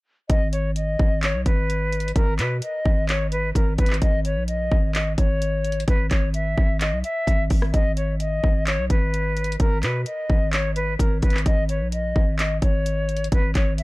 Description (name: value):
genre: hip hop, trap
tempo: 129 BPM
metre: 4/4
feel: half-time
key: G# minor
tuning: A4 = 440 Hz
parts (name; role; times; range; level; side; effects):
- silver concert flute; melody; 0.3-13.8 s; A#4 to E5; -26 LUFS; left 1 dB; low-pass filter, digital delay
- growling 808-style bass; bass; 0.3-13.8 s; G#1 to B2; -24 LUFS; equal; none
- trap drum kit; drums; 0.3-13.8 s; handclaps, hi-hat, kick drum, rim click; -22 LUFS; equal; none
room: little or no reverb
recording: dark, warm production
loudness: -20 LUFS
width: side -21 dB against mid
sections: 0.3-13.8 A section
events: none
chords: 0.3 G#m; 4.0 D#5/G#; 5.9 G#m; 11.5 D#5/G#; 13.3 C#7(no3)/G#